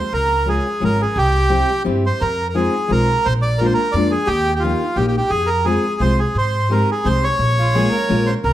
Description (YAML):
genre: musette waltz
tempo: 173 BPM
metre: 3/4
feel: straight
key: F minor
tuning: A4 = 440 Hz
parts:
  - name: bandoneon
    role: melody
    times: 0.0-8.5 s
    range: F4 to D5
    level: -19 LUFS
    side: right 1 dB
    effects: none
  - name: upright bass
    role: bass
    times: 0.1-8.5 s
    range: Ab1 to Ab2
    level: -20 LUFS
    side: equal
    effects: none
  - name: fingerpicked steel-string acoustic guitar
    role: accompaniment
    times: 0.5-8.3 s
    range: G3 to Ab4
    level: -21 LUFS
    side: left 2 dB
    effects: none
  - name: dark violin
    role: second line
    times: 7.6-8.2 s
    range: F4 to Bb4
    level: -24 LUFS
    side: right 4 dB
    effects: none
room: moderate recital hall reverb, RT60 1.5 s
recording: none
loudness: -15 LUFS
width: side -13 dB against mid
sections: 0.0-8.5 A section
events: none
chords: 0.1 Db; 1.2 C; 2.2 Fm7; 3.3 Bb7; 4.3 Eb7; 5.3 Fm; 6.4 Abmaj7; 7.4 Bbm7